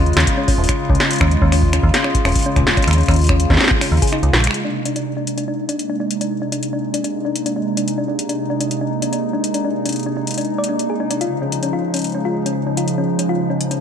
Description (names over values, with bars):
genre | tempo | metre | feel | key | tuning
IDM | 144 BPM | 4/4 | straight | unclear | A4 = 440 Hz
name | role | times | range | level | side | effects
hollow soft pad | sustained chords | 0.0-13.8 s | C3 to F4 | -21 LUFS | right 1 dB | chorus, vintage 12-bit sampler grit
thumb-piano-like synth pluck | arpeggios | 0.0-13.8 s | Db4 to D5 | -23 LUFS | left 3 dB | chorus, cassette tape, digital delay
metallic FM bass | bass | 0.0-4.5 s | Eb1 to Eb2 | -15 LUFS | equal | none
electro analog drum machine | drums | 0.1-13.8 s | finger snaps, hi-hat, snare drum | -20 LUFS | equal | none
electronic kick drum | drums | 0.3-4.1 s | none | -19 LUFS | equal | none
room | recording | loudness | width
moderate lush hall reverb, RT60 1.9 s, digital ambience | bright 1980s-style digital production | -16 LUFS | side -8 dB against mid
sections
0.0-4.5 A section; 4.5-13.8 B section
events
kick drops out 4.1-4.5; filter sweep on synth arpeggio sound 4.5-13.8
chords
0.0 Eb9sus4; 4.5 Bb9sus4; 11.2 Eb9sus4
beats
0.38 0.79 | 1.21 1.63 2.04 2.46 | 2.88 3.29 3.71 4.13 | 4.54 4.96 5.38 5.79 | 6.21 6.63 7.04 7.46 | 7.88 8.29 8.71 9.13 | 9.54 9.96 10.38 10.79 | 11.21 11.63 12.04 12.46 | 12.88 13.29 13.71